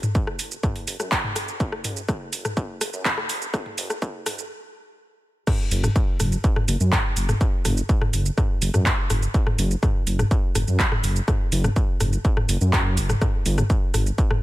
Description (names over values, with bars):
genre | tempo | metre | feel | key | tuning
melodic techno | 124 BPM | 4/4 | straight | unclear | A4 = 440 Hz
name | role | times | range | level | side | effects
dark detuned saw bass | bass | 0.0-14.1 s | F#1 to F#2 | -23 LUFS | equal | sidechain pumping, high-pass filter
techno drum kit | drums | 0.0-14.4 s | crash cymbal, handclaps, hi-hat, rim click, shaker, toms | -25 LUFS | equal | overdrive, sidechain pumping on toms, sidechain pumping on perc, sidechain pumping on hats, sidechain pumping on cymbals
electronic kick drum | drums | 0.1-14.3 s | none | -22 LUFS | equal | distortion, overdrive
room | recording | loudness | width
little or no reverb | high-pass filter | -20 LUFS | side -16 dB against mid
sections
0.0-5.5 A section; 5.5-14.4 B section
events
build-up 0.0-5.5; filter sweep 0.0-5.5; stop 4.5-5.5; drop 5.5-14.4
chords
none